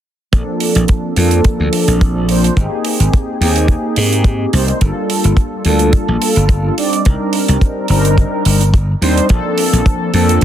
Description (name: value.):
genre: nu-disco, nu disco.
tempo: 107 BPM.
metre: 4/4.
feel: swing 54% on 16ths.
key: Bb major.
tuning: A4 = 440 Hz.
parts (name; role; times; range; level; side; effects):
mellow synth brass; accompaniment; 0.3-10.4 s; F3 to D5; -16 LUFS; equal; chorus, dub echo.
slap bass; bass; 0.3-10.4 s; G1 to Ab2; -14 LUFS; equal; none.
hi-hat; drums; 0.3-10.4 s; none; -21 LUFS; right 8 dB; none.
kick drum; drums; 0.3-10.4 s; none; -12 LUFS; equal; none.
room: light reverb, small room ambience.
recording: dense, heavily limited modern master.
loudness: -11 LUFS.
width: side -10 dB against mid.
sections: 0.3-10.4 A section.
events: none.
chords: 0.3 Bbmaj9; 2.6 Abmaj9; 4.8 Gm9; 6.8 Cm9; 9.3 Bbmaj9.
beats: | 0.33 0.89 1.45 2.01 | 2.57 3.13 3.69 4.25 | 4.81 5.37 5.93 6.49 | 7.05 7.61 8.18 8.74 | 9.30 9.86 10.42.